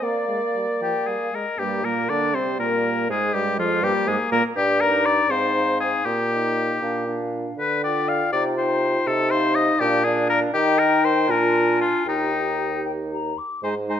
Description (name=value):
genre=quick classical-period movement for wind quintet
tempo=75-83 BPM (dotted quarters)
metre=6/8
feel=rubato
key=Eb major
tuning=A4 = 440 Hz
part: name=mellow hollow silver concert flute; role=melody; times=0.0-14.0 s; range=F4 to D6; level=-29 LUFS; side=left 10 dB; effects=none
part: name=clear oboe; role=second line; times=0.0-14.0 s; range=Eb4 to F5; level=-22 LUFS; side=left 4 dB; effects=none
part: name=bright clarinet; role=accompaniment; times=0.0-14.0 s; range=F3 to D5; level=-30 LUFS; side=right 7 dB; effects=none
part: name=warm French horn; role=accompaniment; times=0.0-14.0 s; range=F3 to G4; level=-27 LUFS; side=equal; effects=none
part: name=dark bassoon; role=bass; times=0.0-14.0 s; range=Eb2 to Bb3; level=-26 LUFS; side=right 3 dB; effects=none
room=moderate recital hall reverb, RT60 1.5 s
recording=none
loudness=-19 LUFS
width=side -9 dB against mid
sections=0.0-1.6 A section; 1.6-13.6 B section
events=none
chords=0.0 Bb; 1.6 Gmadd11; 3.1 Bb5; 4.6 Eb/G; 5.3 Fm7/Ab; 6.1 Eb/Bb; 6.8 Bb; 7.6 G5/D; 8.3 Cm; 9.1 F5/C; 9.8 Bb; 10.5 Eb; 11.3 Bb7; 12.1 Eb